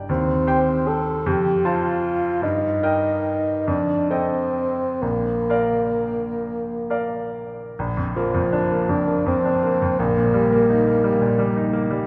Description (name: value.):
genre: classical, romantic duo for bassoon and grand piano.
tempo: 42-59 BPM (dotted quarters).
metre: 6/8.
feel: rubato.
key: Bb major.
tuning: A4 = 440 Hz.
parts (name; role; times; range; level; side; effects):
bright grand piano; accompaniment; 0.0-12.1 s; Bb1 to A5; -25 LUFS; equal; none.
dark bassoon; melody; 0.1-12.1 s; F3 to A4; -23 LUFS; equal; none.
room: wet concert hall reverb, RT60 1.9 s.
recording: heard from further back in the room.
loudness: -21 LUFS.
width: mono.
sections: 0.0-7.8 A section; 7.8-12.1 B section.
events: none.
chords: 0.1 Cm/Eb; 1.3 F; 2.4 Eb/G; 3.7 F9; 5.0 Bb; 10.0 Eb/Bb.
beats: | 0.09 1.26 | 2.43 3.67 | 5.01 6.44 | 7.78 8.90 | 10.00 11.04.